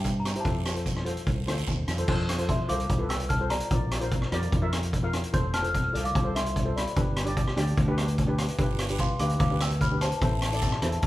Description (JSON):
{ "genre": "calypso", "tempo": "147 BPM", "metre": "4/4", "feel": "straight", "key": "unclear", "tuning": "A4 = 440 Hz", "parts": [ { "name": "small celesta", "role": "melody", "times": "0.0-11.1 s", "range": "C5 to G6", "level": "-32 LUFS", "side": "left 1 dB", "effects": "none" }, { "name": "steel pan", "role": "accompaniment", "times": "0.0-11.0 s", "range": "D4 to F5", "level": "-33 LUFS", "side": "left 1 dB", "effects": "none" }, { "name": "fingered electric bass", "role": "bass", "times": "0.0-11.1 s", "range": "F1 to G2", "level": "-29 LUFS", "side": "equal", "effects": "none" }, { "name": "street-band drum kit", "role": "drums", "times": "0.0-11.1 s", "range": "crash cymbal, hi-hat, kick drum, rim click", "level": "-28 LUFS", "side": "equal", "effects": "none" }, { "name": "guiro", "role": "percussion", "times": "0.0-2.0, 8.6-11.1 s", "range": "none", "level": "-41 LUFS", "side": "right 5 dB", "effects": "none" } ], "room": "moderate large studio reverb, RT60 1.3 s", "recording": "band playing live in one room", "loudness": "-24 LUFS", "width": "side -16 dB against mid", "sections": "0.0-2.1 A section; 2.1-11.1 B section", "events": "none", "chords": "0.5 F; 3.7 Bb; 5.3 F; 7.0 G; 10.2 Am" }